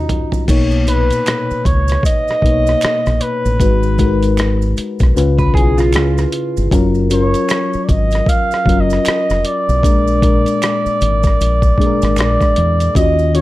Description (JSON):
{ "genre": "R&B, neo-soul", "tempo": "77 BPM", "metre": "4/4", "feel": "swing 60% on 16ths", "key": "unclear", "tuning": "A4 = 441 Hz", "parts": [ { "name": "electric guitar through a small old amp", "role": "second line", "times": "0.0-0.4, 5.4-6.7 s", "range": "Eb4 to Cb5", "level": "-21 LUFS", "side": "right 4 dB", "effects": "none" }, { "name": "mellow FM electric piano", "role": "accompaniment", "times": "0.0-13.4 s", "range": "A#2 to C#5", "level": "-18 LUFS", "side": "left 4 dB", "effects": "chorus" }, { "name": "boom bap sampler-style drum kit", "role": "drums", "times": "0.1-13.4 s", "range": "crash cymbal, hi-hat, kick drum, rim click, toms", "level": "-17 LUFS", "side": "equal", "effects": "none" }, { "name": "maracas and finger snaps", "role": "percussion", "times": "0.3-13.3 s", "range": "none", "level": "-33 LUFS", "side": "right 7 dB", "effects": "none" }, { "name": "deep dub fingered electric bass", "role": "bass", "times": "0.5-13.4 s", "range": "F1 to Fb2", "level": "-16 LUFS", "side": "equal", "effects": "none" }, { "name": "warm flugelhorn", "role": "melody", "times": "0.9-13.4 s", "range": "B4 to F5", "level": "-18 LUFS", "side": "right 1 dB", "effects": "none" } ], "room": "light reverb", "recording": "none", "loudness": "-12 LUFS", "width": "side -16 dB against mid", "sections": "0.5-12.9 A section", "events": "drum fill 0.0-0.5", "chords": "0.5 Bmaj9; 3.6 Abm7; 5.2 Db7; 6.7 Gbmaj7; 9.8 Bb7", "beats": "| 0.48 1.26 2.04 2.82 | 3.60 4.38 5.16 5.94 | 6.71 7.49 8.27 9.05 | 9.83 10.61 11.39 12.17 | 12.95" }